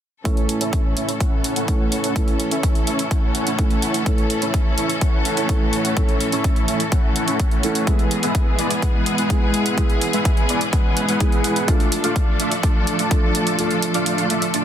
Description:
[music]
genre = EDM, festival progressive house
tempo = 126 BPM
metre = 4/4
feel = straight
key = A major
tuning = A4 = 440 Hz
[part]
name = dark grand piano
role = accompaniment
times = 0.2-14.6 s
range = A2 to A4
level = -26 LUFS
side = right 2 dB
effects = sidechain pumping, tape echo
[part]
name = clear studio string section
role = sustained chords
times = 0.3-14.6 s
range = E3 to A4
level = -26 LUFS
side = equal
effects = sidechain pumping
[part]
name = dense compressed supersaw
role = riff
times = 0.3-14.6 s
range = G#3 to A5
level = -23 LUFS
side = equal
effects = sidechain pumping, low-pass filter, tape echo
[part]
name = electronic hi-hat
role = drums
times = 0.3-14.6 s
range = none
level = -26 LUFS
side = right 1 dB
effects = overdrive
[part]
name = electronic kick drum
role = drums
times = 0.3-13.2 s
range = none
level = -19 LUFS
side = equal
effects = overdrive
[part]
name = swell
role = sound effects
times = 14.6 s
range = none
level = -33 LUFS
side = right 6 dB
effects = none
[sound]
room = light reverb, small room ambience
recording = dense, heavily limited modern master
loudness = -17 LUFS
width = side -10 dB against mid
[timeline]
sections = 0.3-14.6 A section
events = kick drops out 13.6-14.6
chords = 0.3 A; 7.9 E; 11.7 Dm

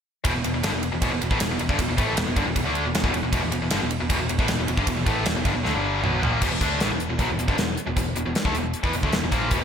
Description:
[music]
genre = hard rock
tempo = 155 BPM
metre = 4/4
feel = straight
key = E minor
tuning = A4 = 436 Hz
[part]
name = tight distorted guitar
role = riff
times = 0.2-9.6 s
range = E2 to D4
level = -27 LUFS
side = left 8 dB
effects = distortion
[part]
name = tight distorted guitar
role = riff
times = 0.2-9.6 s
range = E2 to D4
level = -28 LUFS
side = right 9 dB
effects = distortion
[part]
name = gated 80s drum kit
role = drums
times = 0.2-9.6 s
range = crash cymbal, hi-hat, kick drum, ride cymbal, snare drum, toms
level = -25 LUFS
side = equal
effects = gated reverb
[part]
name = picked electric bass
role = bass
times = 0.3-9.6 s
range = E1 to E2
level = -29 LUFS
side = equal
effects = none
[sound]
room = moderate lush hall reverb, RT60 1.8 s, studio ambience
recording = bright 1980s-style digital production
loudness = -21 LUFS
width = side -7 dB against mid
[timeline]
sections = 0.2-6.4 A section; 6.4-9.6 B section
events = drum fill 5.6-6.4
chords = 0.2 Em; 6.4 E5

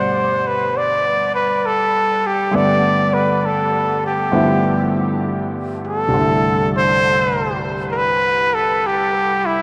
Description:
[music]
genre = jazz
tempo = 67 BPM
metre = 4/4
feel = swing 66% on 8ths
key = G major, C major from 6.1 s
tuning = A4 = 440 Hz
[part]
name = trumpet with straight mute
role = melody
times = 0.0-9.6 s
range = E4 to D5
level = -19 LUFS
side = equal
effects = tape echo
[part]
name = clear grand piano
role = accompaniment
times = 0.0-9.6 s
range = C2 to F#5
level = -23 LUFS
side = equal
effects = subtle chorus
[sound]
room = wet huge ambient reverb, RT60 3.9 s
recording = dreamy mix soaked in reverb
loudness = -18 LUFS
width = mono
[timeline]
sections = 0.0-6.1 A section; 6.1-9.6 B section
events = none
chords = 0.0 Gmaj7; 4.3 G13; 6.1 C6

